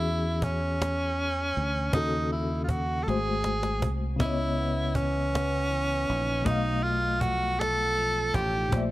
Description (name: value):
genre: slow six-eight R&B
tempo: 53 BPM (dotted quarters)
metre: 6/8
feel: straight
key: unclear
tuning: A4 = 440 Hz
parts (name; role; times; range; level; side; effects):
- breathy tenor saxophone; melody; 0.0-8.8 s; C#4 to A4; -28 LUFS; right 1 dB; none
- reed electric piano; accompaniment; 0.0-8.9 s; A#2 to E#5; -33 LUFS; left 4 dB; overdrive, fast tremolo
- fingered electric bass; bass; 0.0-8.9 s; G#1 to E2; -30 LUFS; equal; none
- cajon; drums; 0.4-8.9 s; none; -29 LUFS; equal; none
- electric guitar at the edge of break-up; second line; 4.2-8.9 s; A#2 to D#4; -37 LUFS; right 3 dB; spring reverb
room: studio ambience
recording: none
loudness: -25 LUFS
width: side -17 dB against mid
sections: 0.0-8.9 A section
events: drum fill 3.1-4.2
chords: 0.0 E69; 1.9 D#m7b5; 3.1 G#7b9; 4.2 C#m9; 6.5 B7#11